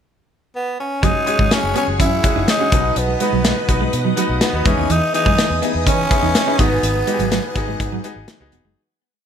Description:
1980s-style pop; 124 BPM; 4/4; straight; A4 = 441 Hz
growling tenor saxophone; melody; 0.6-8.3 s; B3 to E4; -21 LUFS; right 1 dB; plate reverb, ping-pong delay
bright baby grand piano; accompaniment; 1.0-8.8 s; G#2 to B4; -23 LUFS; left 2 dB
string machine, violins; sustained chords; 1.0-8.7 s; G#4 to D#6; -26 LUFS; equal; ensemble chorus
clean electric guitar; riff; 1.0-8.7 s; E3 to D#4; -24 LUFS; right 4 dB; lush chorus
vintage muted fingered electric bass; bass; 1.0-8.7 s; E1 to E3; -23 LUFS; equal
modern studio drum kit; drums; 1.0-8.6 s; hi-hat, kick drum, snare drum; -19 LUFS; equal
moderate studio reverb, RT60 0.6 s; -15 LUFS; side -8 dB against mid
0.0-1.0 pickup bar; 1.0-8.8 bridge
fade-out 6.8-8.8
0.0 N.C.; 1.0 F#sus2; 2.7 B; 4.7 Emaj7; 6.6 G#m7
0.06 0.54 | 1.03 1.51 2.00 2.48 | 2.96 3.45 3.93 4.42 | 4.90 5.38 5.87 6.35 | 6.83 7.32 7.80 8.29

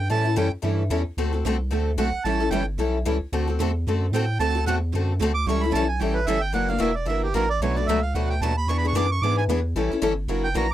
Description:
acoustic string swing (jazz manouche); 224 BPM; 4/4; swing 56% on 8ths; A mixolydian; A4 = 439 Hz
accordion; second line; 0.0-10.7 s; G4 to D6; -26 LUFS; right 5 dB
round analog bass; bass; 0.0-10.7 s; E1 to A2; -25 LUFS; equal
picked steel-string acoustic guitar; accompaniment; 0.1-10.7 s; B2 to A4; -26 LUFS; left 6 dB
picked steel-string acoustic guitar; accompaniment; 0.1-10.7 s; B2 to B4; -29 LUFS; right 8 dB
little or no reverb; dry, close 1970s-style studio recording; -21 LUFS; side -12 dB against mid
0.0-10.7 A section
accordion solo 0.0-10.7
0.0 A7; 1.2 D7; 2.3 A7; 3.3 D7; 5.5 A7; 6.5 F#7alt; 7.6 Bm7; 8.7 E7; 9.8 A7
| 0.10 0.37 0.64 0.91 | 1.18 1.45 1.72 1.98 | 2.25 2.52 2.79 3.06 | 3.32 3.59 3.86 4.13 | 4.40 4.66 4.93 5.20 | 5.47 5.74 6.00 6.27 | 6.54 6.81 7.07 7.34 | 7.61 7.88 8.14 8.41 | 8.68 8.95 9.21 9.48 | 9.75 10.02 10.29 10.55

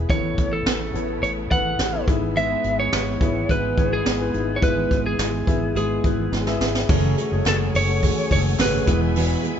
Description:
piano-driven pop; 106 BPM; 4/4; straight; A4 = 440 Hz
warm grand piano; accompaniment; 0.0-9.6 s; G#2 to E5; -27 LUFS; left 5 dB
warm symphonic string section; sustained chords; 0.0-9.6 s; C#3 to B5; -35 LUFS; equal
vintage muted fingered electric bass; bass; 0.0-9.3 s; E1 to A1; -26 LUFS; equal
lightly driven lead guitar; melody; 0.1-9.0 s; G#4 to F#5; -25 LUFS; equal
jazz brush drum kit; drums; 0.1-9.6 s; crash cymbal, hi-hat, kick drum, snare drum; -23 LUFS; right 1 dB
fingerpicked steel-string acoustic guitar; riff; 2.4-9.6 s; E2 to G#4; -27 LUFS; right 5 dB
group handclap; percussion; 7.5-8.7 s; -39 LUFS; left 4 dB
light reverb; band playing live in one room, nothing above 7.6 kHz; -19 LUFS; side -8 dB against mid
0.0-6.9 A section; 6.9-9.6 B section
drum fill 6.3-6.9
0.1 Aadd9; 2.1 E/G#; 6.9 F#madd9; 8.9 Eadd9
| 0.10 0.66 1.23 1.79 | 2.36 2.93 3.49 4.06 | 4.63 5.19 5.76 6.33 | 6.89 7.46 8.02 8.59 | 9.15

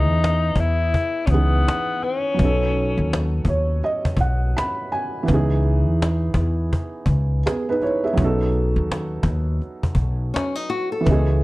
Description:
lo-fi hip hop; 83 BPM; 4/4; swing 62% on 16ths; A4 = 440 Hz
breathy tenor saxophone; melody; 0.0-3.5 s; B3 to E4; -24 LUFS; left 3 dB
felt-muted upright piano; accompaniment; 0.0-11.4 s; E3 to B5; -24 LUFS; right 2 dB; cassette tape
upright bass; bass; 0.0-11.4 s; B1 to E2; -20 LUFS; equal
cajon; drums; 0.2-11.4 s; -24 LUFS; equal
nylon-string guitar; second line; 10.3-11.3 s; C#4 to A4; -25 LUFS; left 2 dB
light reverb; dark, warm production; -18 LUFS; side -19 dB against mid
0.0-11.4 A section
felt piano fill 3.1-5.3
0.0 C#m9; 2.4 B9; 5.3 C#m9; 8.2 B9
0.22 0.94 1.66 | 2.39 3.11 3.83 4.55 | 5.28 6.00 6.72 7.45 | 8.17 8.89 9.62 10.34 | 11.06

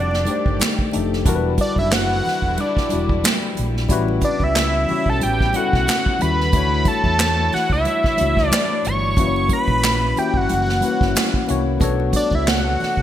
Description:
R&B, neo-soul; 91 BPM; 4/4; swing 57% on 16ths; A4 = 441 Hz
fat analog lead; melody; 0.0-13.0 s; D5 to C#6; -21 LUFS; equal
warm studio string section; sustained chords; 0.0-13.0 s; B2 to D5; -31 LUFS; equal
fingered electric bass; bass; 0.0-13.0 s; E1 to E2; -22 LUFS; right 1 dB
unplugged drum kit; drums; 0.1-13.0 s; handclaps, hi-hat, kick drum, snare drum; -21 LUFS; right 1 dB; gated reverb
congas; percussion; 0.1-13.0 s; -32 LUFS; right 3 dB
tine electric piano; accompaniment; 0.3-13.0 s; F#3 to E5; -24 LUFS; left 6 dB; analog chorus
moderate plate reverb, RT60 1.6 s, studio reverb; bright 1980s-style digital production; -16 LUFS; side -11 dB against mid
0.0-13.0 A section
0.0 F13; 1.3 Em7; 3.9 A13; 6.5 Dmaj9; 9.2 F#7; 11.8 Bm9
0.60 | 1.26 1.92 2.58 3.24 | 3.90 4.55 5.21 5.87 | 6.53 7.19 7.85 8.51 | 9.17 9.83 10.49 11.15 | 11.81 12.47

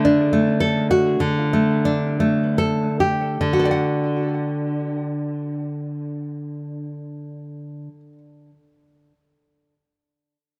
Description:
romantic piece for solo classical guitar; 47-77 BPM; 2/4; rubato; D major; A4 = 440 Hz
nylon-string guitar; solo; 0.0-8.2 s; D3 to F#5; -22 LUFS; equal; tape echo
light reverb; close, detailed microphones; -21 LUFS; mono
0.0-3.4 A section; 3.4-8.4 B section
slowing down 0.0-3.4
0.0 D; 1.2 Dsus4; 3.4 D
0.31 | 1.18 2.18 | 3.40 4.65 | 5.90 7.14

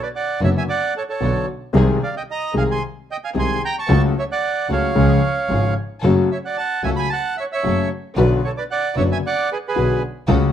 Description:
tango; 112 BPM; 4/4; rubato; A4 = 440 Hz
bandoneon; melody; 0.0-10.0 s; G#4 to C#6; -22 LUFS; right 4 dB
warm concert grand piano; accompaniment; 0.4-10.5 s; F#1 to G#4; -20 LUFS; left 4 dB
warm chamber string section; stabs; 0.4-10.5 s; B3 to B4; -29 LUFS; equal
clear double bass; bass; 0.4-10.5 s; F#1 to C#2; -20 LUFS; right 1 dB
moderate studio reverb, RT60 0.8 s; dark, warm production; -17 LUFS; side -10 dB against mid
0.0-10.5 A section
0.0 Bm; 1.7 G#/B#; 3.9 F#m/C#; 5.0 C#; 6.0 F#m; 8.2 Bm
0.15 0.68 1.22 | 1.75 2.28 2.81 3.35 | 3.88 4.42 4.95 5.49 | 6.03 6.57 7.10 7.63 | 8.16 8.70 9.23 9.76 | 10.29

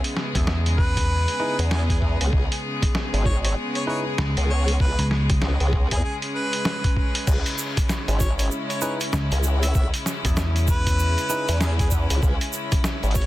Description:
glitch hop; 97 BPM; 4/4; swing 61% on 16ths; C# minor; A4 = 440 Hz
bright chamber string section; sustained chords; 0.0-13.3 s; C#3 to G#4; -29 LUFS; left 1 dB; sidechain pumping
boom bap sampler-style drum kit; drums; 0.0-13.3 s; crash cymbal, hi-hat, snare drum; -28 LUFS; equal
vintage slap bass; bass; 0.3-5.4, 9.1-11.1 s; C#2 to E2; -22 LUFS; equal
electronic kick drum; drums; 0.3-13.3 s; -23 LUFS; equal
clear harmonica; melody; 0.8-13.3 s; G#4 to E5; -31 LUFS; equal; vintage 12-bit sampler grit, digital delay
barky tine electric piano; stabs; 1.4-4.0, 8.8-11.5 s; D#4 to B4; -32 LUFS; equal; sidechain pumping, digital delay
formant-sweep wobble bass; bass; 1.6-13.3 s; G#1 to E2; -22 LUFS; equal; chorus, tube saturation
egg shaker; percussion; 7.3-13.3 s; -34 LUFS; right 6 dB
digital ambience; dense, heavily limited modern master; -20 LUFS; side -16 dB against mid
0.0-13.3 A section
0.0 C#m7
0.47 1.09 1.71 | 2.33 2.95 3.56 4.18 | 4.80 5.42 6.04 6.66 | 7.28 7.89 8.51 9.13 | 9.75 10.37 10.99 11.61 | 12.22 12.84

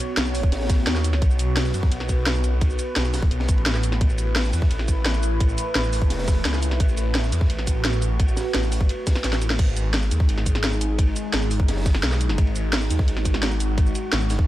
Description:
dark technical drum and bass; 172 BPM; 4/4; straight; G# phrygian; A4 = 444 Hz
dark analog pad; sustained chords; 0.0-14.5 s; G#3 to C#5; -29 LUFS; right 1 dB; chorus, phaser, sidechain pumping
crunchy breakbeat drum kit; drums; 0.0-14.4 s; hi-hat, ride cymbal, snare drum; -35 LUFS; equal; high-pass filter on cymbals, high-pass filter on hats, high-pass filter on snare, high-pass filter on room
drum and bass drum kit; drums; 0.0-14.4 s; crash cymbal, hi-hat, shaker, snare drum; -26 LUFS; equal
phased detuned saw bass; bass; 0.2-14.5 s; E1 to F#2; -23 LUFS; equal; phaser, overdrive, sidechain pumping
electronic kick drum; drums; 0.4-14.5 s; -20 LUFS; equal
small room reverb; dark, warm production; -19 LUFS; side -15 dB against mid
0.0-9.6 A section; 9.6-14.5 A section
drop 0.0-9.6, 9.6-14.5; drum fill 9.2-9.6
0.0 B; 4.0 A5; 9.6 G#m
0.17 0.52 0.87 | 1.22 1.57 1.92 2.27 | 2.61 2.96 3.31 3.66 | 4.01 4.36 4.71 5.06 | 5.41 5.75 6.10 6.45 | 6.80 7.15 7.50 7.85 | 8.20 8.54 8.89 9.24 | 9.59 9.94 10.29 10.64 | 10.99 11.34 11.68 12.03 | 12.38 12.73 13.08 13.43 | 13.78 14.13

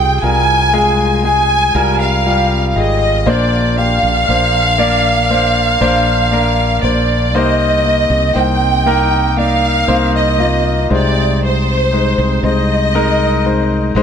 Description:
pop ballad; 59 BPM; 4/4; straight; A4 = 441 Hz
rich studio violin section; melody; 0.0-13.9 s; C5 to Ab5; -14 LUFS; right 1 dB; digital delay
warm concert grand piano; accompaniment; 0.0-14.0 s; Bb2 to Eb5; -16 LUFS; left 3 dB
fretless electric bass; bass; 0.0-14.0 s; Ab1 to C2; -17 LUFS; right 1 dB; ensemble chorus
light reverb, studio ambience; -11 LUFS; side -7 dB against mid
0.0-14.0 A section
0.0 Fmadd9/C; 3.3 Bbadd9; 7.3 Cm7; 10.9 Ab/C
0.22 1.24 2.25 | 3.27 4.29 5.30 6.32 | 7.34 8.36 9.37 10.39 | 11.41 12.42 13.44

